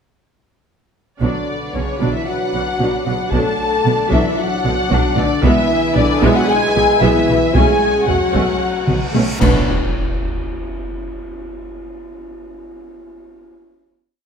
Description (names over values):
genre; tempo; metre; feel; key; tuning
cinematic, epic orchestral film score; 114 BPM; 4/4; straight; B dorian; A4 = 438 Hz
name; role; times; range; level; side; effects
warm symphonic violin section; melody; 1.2-9.7 s; B4 to A5; -22 LUFS; left 4 dB; none
rich symphonic violin section; second line; 1.2-9.7 s; D4 to A5; -25 LUFS; left 4 dB; none
rich symphonic viola section; accompaniment; 1.2-9.7 s; C#3 to D4; -23 LUFS; right 2 dB; none
rich symphonic string section; sustained chords; 1.2-9.7 s; C#4 to G#5; -27 LUFS; left 2 dB; none
warm French horn section; sustained chords; 1.2-9.6 s; C#4 to B4; -21 LUFS; left 3 dB; none
warm trombone section; sustained chords; 1.2-9.6 s; C#3 to B3; -23 LUFS; right 2 dB; none
rich symphonic cello section; bass; 1.2-9.7 s; B2; -23 LUFS; right 3 dB; none
rich symphonic double bass section; bass; 1.2-9.7 s; B1; -23 LUFS; right 3 dB; none
taiko ensemble; drums; 1.2-10.4 s; none; -22 LUFS; equal; none
cymbal swell, clash cymbals and concert bass drum; percussion; 5.4-10.4 s; none; -25 LUFS; equal; none
reverse cymbal and impact; sound effects; 8.8-11.5 s; none; -28 LUFS; equal; none
room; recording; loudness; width
moderate scoring stage reverb, RT60 1.6 s; none; -14 LUFS; side -6 dB against mid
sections
1.2-9.7 theme; 9.7-11.8 final hit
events
reverse cymbal 8.8-9.7; drum fill 8.9-9.7; band accent 9.7-10.2; impact 9.7-11.8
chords
1.2 Bmadd9; 3.3 D6/B; 5.4 E/B; 7.6 F#m/B; 9.4 Bmadd9; 9.7 N.C.